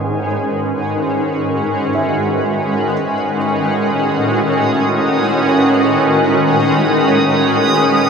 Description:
ambient; free time; A lydian; A4 = 437 Hz
shimmering ambient pad; sustained chords; 0.0-8.1 s; G#2 to B4; -13 LUFS; equal; chorus, built-in reverb
felt-muted upright piano; arpeggios; 0.0-3.4 s; D#5 to F#5; -29 LUFS; right 1 dB
backwards swelling texture; texture; 3.9-8.1 s; D#6; -22 LUFS; right 1 dB; built-in reverb
wet huge ambient reverb, RT60 9.3 s; -13 LUFS; side -6 dB against mid
0.0-8.1 A section
0.0 C#m7/G#; 2.9 Amaj7
free time

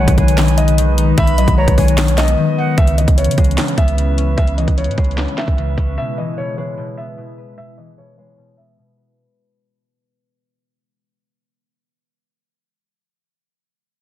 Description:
hip hop, trap; 150 BPM; 4/4; half-time; C# minor; A4 = 440 Hz
dark concert grand piano; melody; 0.0-9.1 s; C#5 to E5; -22 LUFS; left 1 dB; digital delay
reedy silver concert flute; second line; 0.0-2.8 s; F#5 to B5; -25 LUFS; right 4 dB; digital delay
concert harp; accompaniment; 0.0-11.7 s; B2 to B4; -20 LUFS; left 6 dB
hollow soft pad; sustained chords; 0.0-9.1 s; E3 to B4; -26 LUFS; right 3 dB; chorus
clean 808-style bass; bass; 0.0-6.0 s; B1 to C#3; -15 LUFS; right 1 dB
trap drum kit; drums; 0.1-5.9 s; handclaps, hi-hat, kick drum, snare drum; -18 LUFS; equal
small room ambience; dense, heavily limited modern master, low-pass filter; -12 LUFS; side -13 dB against mid
0.0-2.8 A section; 2.8-9.2 B section
break 2.4-2.8; fade-out 2.8-9.2; filter sweep 2.8-9.2
0.0 B6; 2.8 C#m7; 6.0 E
0.38 0.78 | 1.18 1.58 1.98 2.38 | 2.78 3.18 3.58 3.98 | 4.38 4.78 5.18 5.58 | 5.98 6.38 6.78 7.18 | 7.58 7.98 8.38 8.78

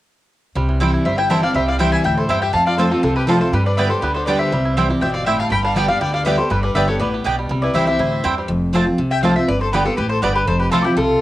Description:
bluegrass; 242 BPM; 4/4; straight; C major; A4 = 440 Hz
bluegrass banjo; melody; 0.6-10.8 s; E3 to G4; -27 LUFS; right 3 dB; cassette tape, plate reverb
picked steel-string acoustic guitar; accompaniment; 0.6-11.2 s; F2 to G4; -20 LUFS; equal; cassette tape, plate reverb
upright bass; bass; 0.6-11.2 s; F1 to G2; -24 LUFS; equal
mandolin; stabs; 0.8-10.8 s; B3 to A5; -22 LUFS; right 4 dB; cassette tape, plate reverb
mandolin; melody; 1.1-11.2 s; G4 to B5; -20 LUFS; left 1 dB; cassette tape, plate reverb
clear fiddle; second line; 1.1-11.2 s; E4 to G5; -25 LUFS; left 3 dB; cassette tape, plate reverb
moderate booth ambience, RT60 0.3 s; home recording on cassette; -15 LUFS; side -15 dB against mid
0.6-8.5 A section; 8.5-11.2 B section
0.6 C; 2.5 F; 3.5 G; 4.5 C; 5.5 G; 7.5 C; 8.5 F; 9.5 G; 10.5 F
| 0.56 0.81 1.05 1.30 | 1.55 1.80 2.04 2.29 | 2.54 2.79 3.04 3.28 | 3.53 3.78 4.03 4.28 | 4.52 4.77 5.02 5.27 | 5.52 5.76 6.01 6.26 | 6.51 6.76 7.00 7.25 | 7.50 7.75 8.00 8.24 | 8.49 8.74 8.99 9.24 | 9.48 9.73 9.98 10.22 | 10.47 10.72 10.97

